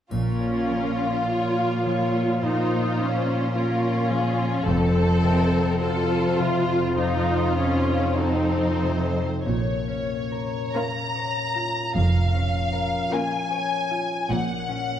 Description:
classical, slow romantic movement for symphony orchestra; 45-55 BPM; 4/4; rubato; Bb minor; A4 = 440 Hz
rich studio violin section; melody; 0.1-15.0 s; Ab4 to Bb5; -29 LUFS; left 3 dB
rich studio violin section; second line; 0.1-14.0 s; Eb4 to Bb4; -27 LUFS; left 1 dB
clear studio viola section; accompaniment; 0.1-14.0 s; Bb3 to F4; -28 LUFS; right 1 dB
concert harp; arpeggios; 0.1-15.0 s; F2 to F5; -28 LUFS; left 3 dB
rich studio cello section; bass; 0.1-15.0 s; F2 to Bb2; -26 LUFS; right 2 dB
warm studio double bass section; bass; 0.1-15.0 s; F1 to Bb1; -26 LUFS; right 2 dB
triangle; percussion; 0.1-2.4 s; -53 LUFS; left 1 dB
wet scoring stage reverb, RT60 2.2 s; dark, warm production; -21 LUFS; side -10 dB against mid
0.1-9.5 A section; 9.5-15.0 B section
0.1 Bbm; 4.7 F7b9; 9.5 Bbm; 14.3 Gb/Bb

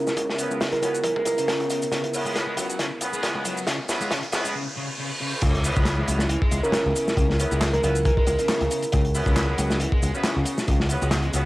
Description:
breakbeat, breaks; 137 BPM; 4/4; swing 55% on 16ths; A4 = 440 Hz
lush unison pad; sustained chords; 0.0-11.5 s; Db3 to Gb4; -36 LUFS; equal; chorus, sidechain pumping, cassette tape
overdriven electric guitar; riff; 0.0-11.5 s; Db3 to Ab3; -32 LUFS; left 1 dB; low-pass filter, cassette tape, tape echo
picked electric bass; bass; 0.0-11.5 s; Db2; -26 LUFS; equal; high-pass filter
riser, reverse cymbal and sub drop; sound effects; 2.0-7.2 s; -36 LUFS; right 1 dB
crunchy breakbeat drum kit; drums; 0.1-11.4 s; crash cymbal, hi-hat, kick drum, snare drum; -25 LUFS; equal; high-pass filter on kick, cassette tape, high-pass filter on hats, high-pass filter on cymbals, high-pass filter on snare, high-pass filter on room
electronic shaker and handclaps; drums; 0.1-11.4 s; -33 LUFS; left 1 dB; overdrive, cassette tape
mellow horn section; stabs; 0.4-11.4 s; Cb4 to Cb5; -32 LUFS; equal; cassette tape, tape echo
kalimba; melody; 0.7-1.4, 6.6-8.5 s; Bb4; -27 LUFS; right 1 dB; old record sound, cassette tape, tape echo
light reverb; home recording on cassette; -21 LUFS; side -18 dB against mid
0.0-5.4 A section; 5.4-11.5 B section
build-up 0.0-5.4; drum fill 1.9-4.5; riser 2.0-5.4; break 4.5-5.4; reverse cymbal 4.5-5.4; drop 5.4-11.5; impact 5.4-7.2
0.0 Dbm7

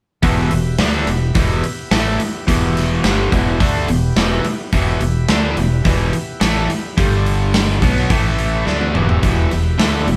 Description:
classic rock; 107 BPM; 4/4; straight; E minor; A4 = 440 Hz
overdriven tonewheel organ; sustained chords; 0.2-10.2 s; B3 to E5; -33 LUFS; equal
cranked stack guitar; riff; 0.2-10.2 s; E2 to D4; -21 LUFS; equal; overdrive
fingered electric bass; bass; 0.2-10.2 s; E1 to D2; -23 LUFS; equal
big rock drum kit; drums; 0.2-10.2 s; hi-hat, kick drum, snare drum, toms; -20 LUFS; equal
moderate studio reverb, RT60 0.5 s; band playing live in one room; -17 LUFS; mono
0.2-10.2 A section
drum fill 8.7-9.2
0.2 Em; 7.0 G5; 7.8 B5; 8.1 A5; 8.7 Em

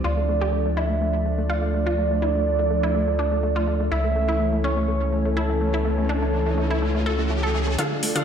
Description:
progressive house; 124 BPM; 4/4; straight; A4 = 439 Hz
expressive synth lead; melody; 0.0-7.7 s; A4 to E5; -26 LUFS; right 4 dB; chorus, sidechain pumping, tape echo
lush unison pad; sustained chords; 0.0-8.2 s; E3 to D4; -27 LUFS; equal; chorus, sidechain pumping
analog pluck; arpeggios; 0.0-8.2 s; A3 to A4; -28 LUFS; equal; chorus, sidechain pumping, tape echo
round analog bass; bass; 0.0-8.2 s; C#2 to D2; -24 LUFS; left 1 dB; sidechain pumping, high-pass filter
riser; sound effects; 5.7-7.8 s; -32 LUFS; right 1 dB
wide unison pluck; stabs; 7.8-8.2 s; D3 to F5; -24 LUFS; left 1 dB; sidechain pumping, tape echo
electronic hi-hat; drums; 7.8-8.2 s; -26 LUFS; left 1 dB; overdrive
electronic kick drum; drums; 7.8-7.9 s; -34 LUFS; left 1 dB
wet plate reverb, RT60 1.7 s, digital ambience; dreamy mix soaked in reverb; -20 LUFS; side -8 dB against mid
0.0-7.8 A section
riser 5.7-7.8
0.0 Dm; 3.9 A/C#

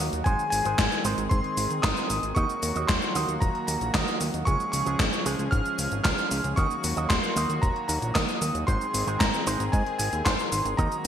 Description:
italo disco; 114 BPM; 4/4; straight; A4 = 440 Hz
warm analog pad; sustained chords; 0.0-11.1 s; Eb3 to Ab4; -33 LUFS; equal; chorus
electric guitar with an envelope filter; stabs; 0.0-11.0 s; F3 to Eb5; -34 LUFS; right 6 dB; vintage 12-bit sampler grit
fat analog bass; bass; 0.0-11.1 s; Eb1 to Ab2; -31 LUFS; equal
gated 80s digital drum machine; drums; 0.0-11.1 s; cabasa, handclaps, hi-hat, snare drum; -29 LUFS; equal; gated reverb, gated reverb snare, overdrive
bright electric grand piano; melody; 0.2-11.1 s; Ab5 to F6; -30 LUFS; equal; vintage 12-bit sampler grit, digital delay
electronic kick drum; drums; 0.3-10.9 s; -26 LUFS; equal
moderate plate reverb, RT60 1.9 s; bright 1980s-style digital production; -23 LUFS; side -9 dB against mid
0.0-11.1 A section
0.3 Ab; 2.4 Ebm; 4.5 Db; 6.6 Ebm; 8.7 Ab

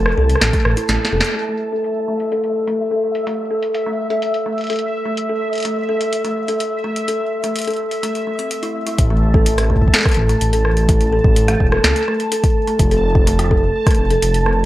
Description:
IDM; 126 BPM; 4/4; straight; A4 = 440 Hz
kalimba; arpeggios; 0.0-14.6 s; A3 to A4; -20 LUFS; equal; vintage 12-bit sampler grit, low-pass filter, dub echo
dark detuned saw bass; bass; 0.0-1.2, 9.0-14.7 s; E1 to C#2; -17 LUFS; equal
bubbling stepped-filter texture; texture; 0.0-14.7 s; E5 to A5; -26 LUFS; equal; chorus, built-in reverb
booming analog drum machine; drums; 0.1-14.6 s; hi-hat, rim click, snare drum; -21 LUFS; equal; low-pass filter on snare, low-pass filter on hats, low-pass filter on room
electronic kick drum; drums; 0.5-0.6, 9.0-14.0 s; -16 LUFS; equal
light reverb, digital ambience; worn, warbling old tape, cassette tape, warbly pitch drift; -15 LUFS; side -15 dB against mid
0.0-1.4 A section; 1.4-9.0 B section; 9.0-14.7 C section
drum fill 0.9-1.4; band accent 1.2; filter sweep on drum 1.4-9.0; filter sweep on kalimba 1.4-9.0
0.0 F; 1.4 A5; 9.0 N.C.; 12.6 F

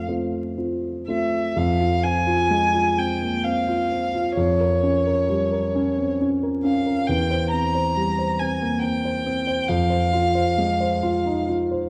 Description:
classical, romantic duo for violin and grand piano; 39-47 BPM (dotted quarters); 6/8; rubato; F minor; A4 = 440 Hz
rich violin; melody; 0.0-11.5 s; Db5 to Bb5; -26 LUFS; equal
warm concert grand piano; accompaniment; 0.0-11.9 s; E2 to C5; -24 LUFS; equal
moderate concert hall reverb, RT60 2.2 s; dark, warm production, vinyl crackle; -22 LUFS; mono
0.0-1.6 A section; 1.6-11.9 B section
0.0 F; 1.6 Fm; 4.4 Gm7b5/F; 7.1 C/E; 9.7 Fm

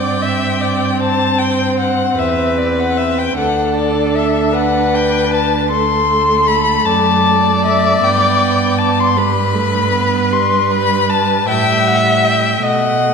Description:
classical, slow romantic movement for string quartet; 52 BPM (dotted quarters); 12/8; rubato; G major; A4 = 440 Hz
muted violin; melody; 0.0-13.1 s; D5 to C6; -16 LUFS; left 5 dB
muted violin; second line; 0.0-13.1 s; A4 to E5; -17 LUFS; left 1 dB
muted viola; accompaniment; 0.0-13.1 s; G3 to D4; -20 LUFS; right 3 dB
muted cello; bass; 0.0-13.1 s; D2 to B2; -20 LUFS; right 5 dB
wet scoring stage reverb, RT60 1.7 s; -12 LUFS; side -5 dB against mid
0.0-13.1 A section
0.0 C/G; 3.4 D; 8.0 G; 12.6 B7

